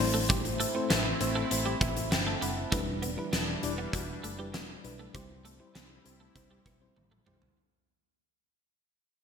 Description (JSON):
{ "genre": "1980s-style pop", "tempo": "99 BPM", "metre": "4/4", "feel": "straight", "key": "unclear", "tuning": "A4 = 440 Hz", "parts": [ { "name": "FM electric piano with auto-pan", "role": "accompaniment", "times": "0.0-7.6 s", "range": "G3 to B5", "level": "-35 LUFS", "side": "left 2 dB", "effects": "none" }, { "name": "sweeping resonant pad", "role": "sustained chords", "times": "0.0-7.5 s", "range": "E3 to E4", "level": "-38 LUFS", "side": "right 2 dB", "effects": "chorus" }, { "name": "vintage muted fingered electric bass", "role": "bass", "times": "0.0-7.5 s", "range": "E1 to C2", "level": "-37 LUFS", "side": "equal", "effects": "none" }, { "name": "huge arena drum kit", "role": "drums", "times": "0.0-7.6 s", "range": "hi-hat, kick drum, snare drum, toms", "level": "-31 LUFS", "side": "left 1 dB", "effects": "gated reverb" }, { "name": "twelve-string electric guitar", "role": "riff", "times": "0.1-7.4 s", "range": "G3 to D4", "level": "-38 LUFS", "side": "right 3 dB", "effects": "ensemble chorus, digital delay" } ], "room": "moderate plate reverb, RT60 1.6 s, small room ambience", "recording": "bright 1980s-style digital production", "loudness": "-28 LUFS", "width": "side -7 dB against mid", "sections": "0.0-7.6 A section", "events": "fade-out 0.0-7.6; FM electric piano fill 1.5-2.7; drum fill 7.0-7.6", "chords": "0.0 Am; 2.7 Em7; 5.1 C" }